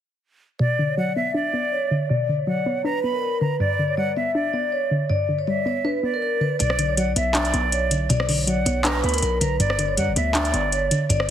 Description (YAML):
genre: hip hop, trap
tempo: 160 BPM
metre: 4/4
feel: half-time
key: B harmonic minor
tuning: A4 = 442 Hz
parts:
  - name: vibraphone with soft mallets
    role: melody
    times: 0.6-11.3 s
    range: A#4 to E5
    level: -25 LUFS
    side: left 2 dB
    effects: low-pass filter, tape echo
  - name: jazz flute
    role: second line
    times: 0.6-11.1 s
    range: D5 to B5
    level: -28 LUFS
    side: right 5 dB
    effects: tape echo
  - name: soft round pluck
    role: accompaniment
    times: 0.6-11.3 s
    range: G2 to D4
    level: -24 LUFS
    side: left 1 dB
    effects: chorus, low-pass filter
  - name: distorted 808-style bass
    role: bass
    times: 6.6-11.3 s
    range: G1 to G2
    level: -25 LUFS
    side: right 1 dB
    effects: distortion
  - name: booming analog drum machine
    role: drums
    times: 6.6-11.3 s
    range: handclaps, hi-hat, rim click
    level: -25 LUFS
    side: equal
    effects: none
room: light reverb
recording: heavily compressed radio sound, multiband compression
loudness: -20 LUFS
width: side -10 dB against mid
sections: 0.6-6.6 A section; 6.6-11.3 B section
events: filter sweep 0.6-6.6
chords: 0.6 Bm; 3.6 G; 6.6 Bm; 9.6 G